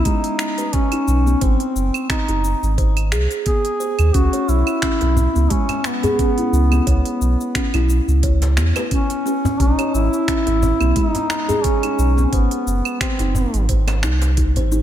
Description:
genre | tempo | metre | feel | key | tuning
organic downtempo | 88 BPM | 4/4 | swing 55% on 16ths | unclear | A4 = 440 Hz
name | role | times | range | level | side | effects
mellow duduk | melody | 0.0-13.7 s | B3 to G#4 | -22 LUFS | equal | ping-pong delay
kalimba | arpeggios | 0.0-14.8 s | G#3 to C#5 | -23 LUFS | left 1 dB | ping-pong delay
warm sub bass | bass | 0.0-14.8 s | F#1 to E2 | -17 LUFS | equal | none
electronic kick drum | drums | 0.1-14.5 s | none | -20 LUFS | equal | studio reverb
organic electronic drum kit | drums | 0.1-14.8 s | cabasa, claves, finger snaps, hi-hat | -27 LUFS | right 2 dB | studio reverb
djembe | percussion | 5.0-14.8 s | none | -28 LUFS | left 2 dB | none
room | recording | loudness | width
moderate lush hall reverb, RT60 1.9 s, small room ambience | dreamy mix soaked in reverb | -16 LUFS | side -11 dB against mid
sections
0.0-14.8 A section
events
none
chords
0.0 B69; 1.4 G#7; 4.1 C#m7; 9.6 B69; 12.3 G#7

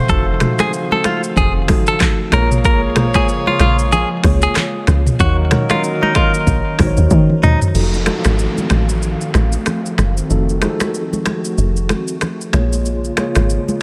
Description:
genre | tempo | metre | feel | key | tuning
afrobeats | 94 BPM | 4/4 | swing 58% on 16ths | unclear | A4 = 440 Hz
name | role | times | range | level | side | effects
mellow horn section | second line | 0.0-7.4 s | Gb3 to Db5 | -26 LUFS | equal | none
mellow tine electric piano | accompaniment | 0.0-13.8 s | Eb3 to Db5 | -24 LUFS | equal | none
hollow soft pad | sustained chords | 0.0-13.8 s | Db3 to F5 | -28 LUFS | equal | ensemble chorus
direct-recorded clean electric guitar | melody | 0.1-7.6 s | Eb4 to Bb4 | -22 LUFS | equal | spring reverb, delay
deep log drum bass | bass | 0.1-13.6 s | F1 to Eb3 | -18 LUFS | equal | none
afro-pop drum kit | drums | 0.1-13.8 s | crash cymbal, finger snaps, handclaps, hi-hat, kick drum, rim click, shaker, toms | -21 LUFS | equal | vintage 12-bit sampler grit
congas | percussion | 0.4-13.8 s | none | -25 LUFS | equal | none
downlifter | sound effects | 7.8-12.9 s | none | -33 LUFS | equal | none
room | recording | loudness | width
little or no reverb | none | -16 LUFS | mono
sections
0.0-7.8 A section; 7.8-13.8 B section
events
drum fill 7.1-7.8; break 7.8-13.8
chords
0.0 F7b9; 2.3 Bbm7; 5.2 Ebm7; 7.8 F7b9; 12.5 Bbm7

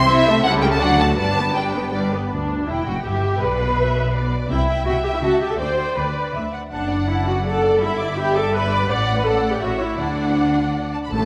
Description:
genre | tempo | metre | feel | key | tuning
quick classical-period movement for string orchestra | 164 BPM | 3/4 | straight | G major, D major from 6.7 s | A4 = 440 Hz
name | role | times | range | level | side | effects
warm symphonic violin section | melody | 0.0-11.2 s | D5 to B5 | -27 LUFS | equal | none
warm symphonic violin section | second line | 0.0-11.2 s | D4 to D6 | -29 LUFS | equal | none
clear symphonic viola section | accompaniment | 0.0-11.2 s | F#3 to D5 | -24 LUFS | equal | none
clear symphonic double bass section | bass | 0.0-11.2 s | E1 to D2 | -28 LUFS | equal | none
rich symphonic cello section | bass | 0.0-11.2 s | D2 to D3 | -29 LUFS | equal | none
room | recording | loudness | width
wet scoring stage reverb, RT60 1.9 s | none | -20 LUFS | mono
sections
0.0-2.3 A section; 2.3-11.1 A section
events
none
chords
0.1 Am/C; 0.5 A7/C#; 0.8 D; 1.2 G; 2.3 G5; 3.4 Bmadd11; 4.5 C; 5.2 A/C#; 5.6 G/D; 6.4 N.C.; 6.7 D/F#; 7.8 G6; 8.9 D/A; 9.6 A; 10.0 D

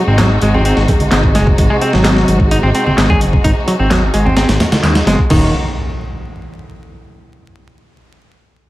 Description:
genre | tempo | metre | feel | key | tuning
breakbeat, breaks | 129 BPM | 4/4 | straight | unclear | A4 = 440 Hz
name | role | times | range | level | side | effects
rich studio string section | sustained chords | 0.0-5.5 s | C3 to Gb4 | -19 LUFS | equal | vintage 12-bit sampler grit, sidechain pumping
semi-hollow electric guitar | riff | 0.1-5.5 s | Eb3 to Ab4 | -17 LUFS | equal | tube saturation, spring reverb, low-pass filter, tape echo
fat analog bass | bass | 0.1-5.5 s | Eb1 to Eb2 | -14 LUFS | equal | none
breakbeat sampler-style drum kit | drums | 0.2-5.4 s | crash cymbal, hi-hat, kick drum, snare drum | -15 LUFS | equal | small room ambience
electronic handclaps | drums | 0.2-4.9 s | none | -22 LUFS | equal | overdrive, low-pass filter on snare, small room ambience, low-pass filter on room
congas | percussion | 0.2-4.8 s | none | -20 LUFS | right 1 dB | none
impact | sound effects | 5.3-7.2 s | none | -23 LUFS | equal | none
room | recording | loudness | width
little or no reverb | vinyl crackle | -10 LUFS | side -16 dB against mid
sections
0.0-5.3 A section; 5.3-7.2 B section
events
filter sweep on analog synth bass 0.0-5.3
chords
0.0 Ab7; 5.3 N.C.

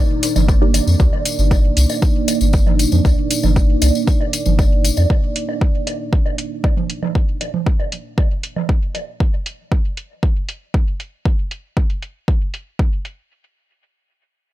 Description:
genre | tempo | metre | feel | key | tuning
dub techno | 117 BPM | 4/4 | straight | C minor | A4 = 439 Hz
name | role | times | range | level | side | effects
dark analog pad | sustained chords | 0.0-9.2 s | Bb3 to D5 | -22 LUFS | right 2 dB | chorus, phaser, sidechain pumping
electronic hi-hat | drums | 0.2-13.2 s | none | -24 LUFS | right 1 dB | overdrive, low-pass filter on hats, low-pass filter on snare
tambourine | percussion | 0.2-5.1 s | none | -26 LUFS | left 6 dB | none
soft dub sub bass | bass | 0.4-5.1 s | G1 to F2 | -15 LUFS | equal | sidechain pumping
congas and woodblock | percussion | 0.4-9.1 s | none | -26 LUFS | right 5 dB | overdrive, sidechain pumping on perc, dub echo
electronic kick drum | drums | 0.5-12.9 s | none | -16 LUFS | equal | overdrive
filtered dub chord stab | stabs | 0.6-0.9 s | Eb4 to D5 | -29 LUFS | right 2 dB | phaser, sidechain pumping, dub echo
room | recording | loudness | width
little or no reverb | none | -15 LUFS | side -15 dB against mid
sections
0.0-13.3 A section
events
none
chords
0.0 Cm9 (rootless)

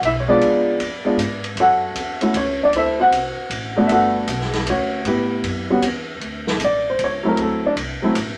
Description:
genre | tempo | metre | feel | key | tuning
jazz piano trio | 156 BPM | 3/4 | swing 66% on 8ths | D major | A4 = 438 Hz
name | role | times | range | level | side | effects
upright bass | bass | 0.0-8.4 s | F#1 to A2 | -33 LUFS | equal | none
open jazz drum kit | drums | 0.0-8.3 s | hi-hat, ride cymbal, snare drum | -29 LUFS | equal | none
warm baby grand piano | melody | 0.1-8.1 s | F#3 to F#5 | -20 LUFS | equal | none
room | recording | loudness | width
moderate small room reverb, RT60 0.6 s | none | -20 LUFS | mono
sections
0.0-6.2 A section; 6.2-8.4 B section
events
grand piano solo 6.2-8.4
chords
0.4 C#7b9; 1.6 F#m7; 2.7 D9; 3.9 Gmaj9; 5.1 A7sus2; 6.2 Dmaj7(no3); 7.4 D7

